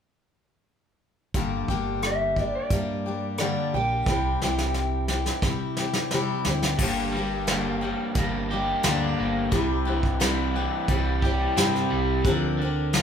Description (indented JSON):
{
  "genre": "folk rock and heartland rock",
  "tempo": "88 BPM",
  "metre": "4/4",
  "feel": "straight",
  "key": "G dorian",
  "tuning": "A4 = 440 Hz",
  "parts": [
    { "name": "picked steel-string acoustic guitar", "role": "accompaniment", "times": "1.3-13.0 s", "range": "G2 to Bb4", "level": "-27 LUFS", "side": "left 2 dB", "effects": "none" },
    { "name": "fingered electric bass", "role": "bass", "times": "1.3-13.0 s", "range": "G1 to C3", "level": "-30 LUFS", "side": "equal", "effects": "none" },
    { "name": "soft brush drum kit", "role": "drums", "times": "1.3-13.0 s", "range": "crash cymbal, hi-hat, kick drum, rim click, snare drum", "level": "-27 LUFS", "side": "right 1 dB", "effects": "none" },
    { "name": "electric slide guitar", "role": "melody", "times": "2.1-5.1 s", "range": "D5 to G5", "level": "-29 LUFS", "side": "right 1 dB", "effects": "digital delay" },
    { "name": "crunchy overdriven guitar", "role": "riff", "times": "6.8-13.0 s", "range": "G2 to G4", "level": "-29 LUFS", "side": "right 2 dB", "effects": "none" }
  ],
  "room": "moderate large studio reverb, RT60 0.8 s",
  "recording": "band playing live in one room",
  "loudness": "-23 LUFS",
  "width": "side -8 dB against mid",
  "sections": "1.3-6.8 A section; 6.8-13.0 B section",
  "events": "drum fill 4.1-6.8",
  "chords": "1.3 Gm; 4.1 C; 6.8 Gm; 9.5 C; 12.3 Bbadd9/D"
}